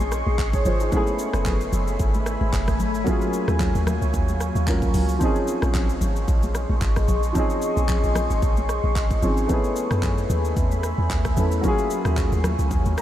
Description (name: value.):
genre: amapiano.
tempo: 112 BPM.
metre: 4/4.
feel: swing 55% on 16ths.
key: Bb minor.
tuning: A4 = 440 Hz.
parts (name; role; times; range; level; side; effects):
warm concert grand piano; accompaniment; 0.0-13.0 s; F3 to Bb5; -26 LUFS; equal; lush chorus.
deep dark ambient pad; sustained chords; 0.0-13.0 s; Gb3 to Db6; -29 LUFS; left 2 dB; chorus, built-in reverb, sidechain pumping.
deep log drum bass; bass; 0.0-13.0 s; Gb1 to Gb2; -23 LUFS; equal; none.
deep house drum kit; drums; 0.0-13.0 s; handclaps, hi-hat, kick drum, rim click, shaker; -25 LUFS; equal; none.
congas; percussion; 0.0-13.0 s; none; -33 LUFS; left 1 dB; none.
room: moderate huge ambient reverb, RT60 7.4 s.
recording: dreamy mix soaked in reverb.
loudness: -20 LUFS.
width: side -12 dB against mid.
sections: 0.0-13.0 A section.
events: grand piano fill 12.7-13.0.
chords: 0.0 Bbm11; 0.9 Gbm11; 3.1 Ebm11; 5.2 Bbm11; 9.5 Gbm11; 11.6 Ebm11.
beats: 0.39 | 0.92 1.46 2.00 2.53 | 3.07 3.60 4.14 4.67 | 5.21 5.75 6.28 6.82 | 7.35 7.89 8.42 8.96 | 9.49 10.03 10.57 11.10 | 11.64 12.17 12.71.